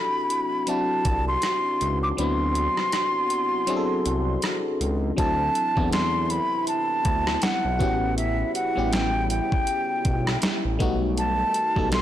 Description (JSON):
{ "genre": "contemporary R&B", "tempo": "80 BPM", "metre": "4/4", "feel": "swing 58% on 16ths", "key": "unclear", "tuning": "A4 = 440 Hz", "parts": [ { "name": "mellow concert flute", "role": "melody", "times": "0.0-12.0 s", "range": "E5 to D6", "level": "-25 LUFS", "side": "equal", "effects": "tape echo" }, { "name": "FM electric piano", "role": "accompaniment", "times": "0.0-12.0 s", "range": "F#3 to A4", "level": "-28 LUFS", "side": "left 2 dB", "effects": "chorus" }, { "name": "mellow French horn section", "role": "sustained chords", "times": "0.0-12.0 s", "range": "C3 to F#4", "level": "-32 LUFS", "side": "right 2 dB", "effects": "stereo widening" }, { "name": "detuned 8-bit digital drum machine", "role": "drums", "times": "0.3-12.0 s", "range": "hi-hat, kick drum, rim click, snare drum", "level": "-27 LUFS", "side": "right 1 dB", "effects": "overdrive" }, { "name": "smooth gliding synth bass", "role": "bass", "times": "1.1-12.0 s", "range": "A1 to E2", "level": "-27 LUFS", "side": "equal", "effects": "none" } ], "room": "light reverb", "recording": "blown-out, overdriven recording, overdrive", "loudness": "-21 LUFS", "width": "side -11 dB against mid", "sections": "0.0-5.2 A section; 5.2-12.0 B section", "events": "kick muted 2.2-5.2", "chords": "0.0 D7; 5.2 D9; 7.8 A13; 10.8 B7b13" }